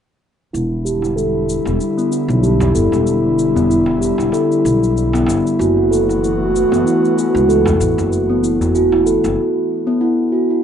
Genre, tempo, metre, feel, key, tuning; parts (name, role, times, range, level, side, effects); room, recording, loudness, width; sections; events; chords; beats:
organic downtempo; 95 BPM; 4/4; swing 56% on 16ths; E minor; A4 = 440 Hz
airy breathy pad; sustained chords; 0.5-9.3 s; D3 to F#4; -18 LUFS; left 1 dB; chorus
steel tongue drum; arpeggios; 0.5-10.6 s; B3 to A4; -16 LUFS; equal; low-pass filter, digital delay
upright bass; bass; 0.5-9.3 s; E1 to C#2; -20 LUFS; equal
cabasa; drums; 0.5-9.4 s; -33 LUFS; left 5 dB
darbuka; percussion; 1.0-9.4 s; -25 LUFS; right 1 dB
wet small room reverb, RT60 0.5 s; rough home demo mix, nothing above 11.0 kHz; -13 LUFS; side -8 dB against mid
0.5-10.6 A section
filter sweep on upright bass 0.5-10.6; filter sweep on steel tongue drum 0.5-10.6; break 9.4-10.6
0.5 Em7; 5.6 F#m7
| 0.54 1.17 1.80 2.43 | 3.06 3.70 4.33 4.96 | 5.59 6.22 6.86 7.49 | 8.12 8.75 9.38 10.01